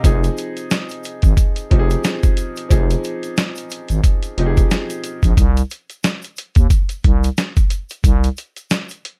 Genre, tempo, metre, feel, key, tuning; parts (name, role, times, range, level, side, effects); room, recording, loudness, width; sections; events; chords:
hip hop, boom-bap hip-hop; 90 BPM; 4/4; swing 57% on 16ths; F minor; A4 = 439 Hz
warm upright piano; accompaniment; 0.0-5.4 s; F3 to Eb5; -27 LUFS; equal; high-pass filter, low-pass filter
growling FM bass; bass; 0.0-8.3 s; F1 to Eb2; -20 LUFS; equal
boom bap sampler-style drum kit; drums; 0.0-9.2 s; hi-hat, kick drum, snare drum; -18 LUFS; equal
tube shaker; percussion; 0.0-9.0 s; -40 LUFS; equal
little or no reverb; dark, warm production; -18 LUFS; mono
0.0-9.2 A section
0.0 Fm7; 5.4 N.C.